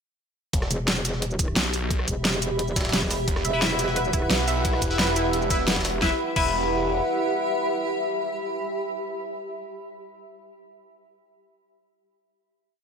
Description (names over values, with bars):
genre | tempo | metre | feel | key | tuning
dark technical drum and bass | 175 BPM | 4/4 | straight | E minor | A4 = 440 Hz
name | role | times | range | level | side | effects
phased detuned saw bass | bass | 0.5-7.0 s | E1 to B1 | -28 LUFS | equal | phaser, tube saturation, sidechain pumping
dubstep drum kit | drums | 0.5-6.5 s | crash cymbal, hi-hat, rim click, shaker, snare drum | -26 LUFS | equal | overdrive
electronic kick drum | drums | 0.5-6.5 s | none | -27 LUFS | equal | overdrive
jungle sampler-style drum kit | drums | 0.5-5.9 s | hi-hat, snare drum | -32 LUFS | right 1 dB | high-pass filter on hats, high-pass filter on snare, high-pass filter on room
granular cloud pad | texture | 1.2-9.5 s | G4 to B5 | -29 LUFS | right 1 dB | built-in reverb, sidechain pumping
metallic wobble bass | bass | 0.7-4.3 s | E1 | -28 LUFS | equal | chorus
dark analog pad | sustained chords | 3.3-9.5 s | E4 to F#5 | -30 LUFS | right 1 dB | chorus, sidechain pumping
analog pluck | arpeggios | 3.4-6.5 s | E4 to E5 | -32 LUFS | right 3 dB | chorus, sidechain pumping, ping-pong delay
band-passed chord stab | stabs | 3.5-10.0 s | E4 to E5 | -29 LUFS | left 4 dB | phaser, ping-pong delay
room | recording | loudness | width
moderate lush hall reverb, RT60 1.9 s, digital ambience | none | -22 LUFS | side -6 dB against mid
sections
0.5-6.0 drop; 6.0-8.8 final chord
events
drop 0.5-6.0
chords
0.5 Em